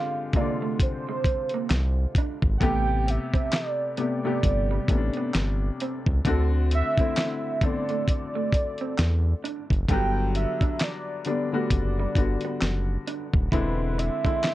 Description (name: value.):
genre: R&B, neo-soul.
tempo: 66 BPM.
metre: 4/4.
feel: swing 59% on 16ths.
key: unclear.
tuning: A4 = 440 Hz.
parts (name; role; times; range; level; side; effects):
warm velvety synth lead; melody; 0.0-14.5 s; A4 to G5; -30 LUFS; right 3 dB; chorus.
clear grand piano; accompaniment; 0.0-14.5 s; B#2 to A4; -30 LUFS; left 4 dB; none.
dusty soul sampler-style drum kit; drums; 0.3-14.5 s; handclaps, hi-hat, kick drum, snare drum; -24 LUFS; equal; none.
electric guitar through a small old amp; second line; 0.4-14.5 s; G3 to G4; -34 LUFS; right 6 dB; spring reverb.
round analog bass; bass; 1.7-14.1 s; D#1 to E2; -24 LUFS; equal; none.
room: little or no reverb.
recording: cassette tape.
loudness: -23 LUFS.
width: side -15 dB against mid.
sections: 0.0-14.5 A section.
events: none.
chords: 0.0 A#13 (rootless); 2.6 Am9; 6.2 D7; 9.9 Gmaj7; 13.5 E7b13.